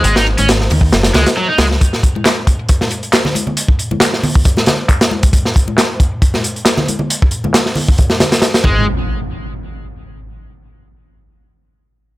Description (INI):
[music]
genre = breakbeat, breaks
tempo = 136 BPM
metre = 4/4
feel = swing 54% on 16ths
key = unclear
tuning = A4 = 440 Hz
[part]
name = crunchy overdriven guitar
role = riff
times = 0.0-1.6, 8.6-8.9 s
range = F#3 to D#4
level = -17 LUFS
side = equal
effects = tube saturation, vintage 12-bit sampler grit, tape echo
[part]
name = deep dub picked electric bass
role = bass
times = 0.0-1.8, 8.6-8.8 s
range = F#1 to D#2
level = -15 LUFS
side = equal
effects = none
[part]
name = crunchy breakbeat drum kit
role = drums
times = 0.0-8.7 s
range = hi-hat, kick drum, snare drum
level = -12 LUFS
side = equal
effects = none
[part]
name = garage drum kit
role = drums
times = 0.0-8.6 s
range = handclaps, hi-hat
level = -21 LUFS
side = equal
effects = low-pass filter on hats, low-pass filter on snare
[part]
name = congas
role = percussion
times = 0.4-8.7 s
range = none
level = -22 LUFS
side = left 1 dB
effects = none
[part]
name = impact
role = sound effects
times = 8.6-10.4 s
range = none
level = -22 LUFS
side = equal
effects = none
[sound]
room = little or no reverb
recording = none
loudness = -11 LUFS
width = side -18 dB against mid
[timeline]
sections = 0.0-8.9 A section; 8.9-10.6 B section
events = filter sweep on drum 0.0-8.9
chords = 0.0 G#7(no3); 8.6 N.C.